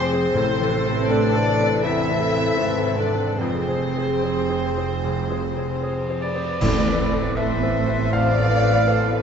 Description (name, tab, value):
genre	cinematic, emotional film score for orchestra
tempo	72-82 BPM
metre	4/4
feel	rubato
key	A harmonic minor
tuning	A4 = 440 Hz
part	rich studio violin section	melody	0.0-9.2 s	B4 to E5	-31 LUFS	left 3 dB	none
part	dark studio violin section	second line	0.0-9.2 s	B4 to E5	-30 LUFS	left 3 dB	none
part	mellow hollow small flute group	second line	0.0-9.2 s	C5 to F5	-30 LUFS	left 1 dB	none
part	warm clarinet	second line	0.0-6.2 s	C4 to E4	-30 LUFS	left 2 dB	none
part	dark studio viola section	accompaniment	0.0-9.2 s	E3 to A4	-29 LUFS	right 3 dB	none
part	felt-muted upright piano	accompaniment	0.0-9.2 s	C2 to F5	-28 LUFS	left 1 dB	none
part	mellow French horn section	sustained chords	0.0-9.2 s	C4 to C5	-28 LUFS	left 2 dB	none
part	concert harp	arpeggios	0.0-9.2 s	F2 to B5	-29 LUFS	left 7 dB	none
part	warm studio cello section	bass	0.0-9.2 s	F2 to A2	-28 LUFS	right 3 dB	none
part	warm studio double bass section	bass	0.0-9.2 s	F1 to A1	-28 LUFS	right 4 dB	none
part	timpani	percussion	0.3-1.4, 6.6-7.7 s	A2	-29 LUFS	right 1 dB	none
part	cymbal swell, clash cymbals and concert bass drum	percussion	3.4-8.1 s	none	-32 LUFS	right 1 dB	none
part	clear oboe	second line	6.2-9.2 s	D5 to F5	-28 LUFS	right 4 dB	none
room	wet scoring stage reverb, RT60 2.1 s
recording	nothing above 7.8 kHz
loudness	-19 LUFS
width	side -7 dB against mid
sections	0.0-6.6 A section; 6.6-9.2 B section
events	band accent 6.6-7.4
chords	0.4 Amadd9; 3.4 Fm; 6.6 Amadd9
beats	| 0.36 1.09 1.84 2.60 | 3.40 4.22 5.03 5.82 | 6.61 7.36 8.12 8.87